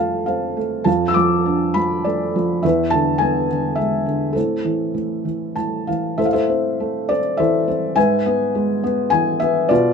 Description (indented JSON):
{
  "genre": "classical, lyrical solo piano",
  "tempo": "103 BPM",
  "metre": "3/4",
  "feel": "rubato",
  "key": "A harmonic minor",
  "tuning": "A4 = 440 Hz",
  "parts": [
    { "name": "felt-muted upright piano", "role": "solo", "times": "0.0-9.9 s", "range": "E2 to E6", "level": "-17 LUFS", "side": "equal", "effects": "none" }
  ],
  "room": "light reverb",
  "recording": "minimal, uncompressed stereo recording",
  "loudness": "-17 LUFS",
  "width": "side -6 dB against mid",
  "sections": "0.0-6.2 A section; 6.2-9.9 B section",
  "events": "none",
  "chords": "0.0 F; 0.9 Dm/F; 2.6 E7; 4.3 Am; 8.0 E/G#"
}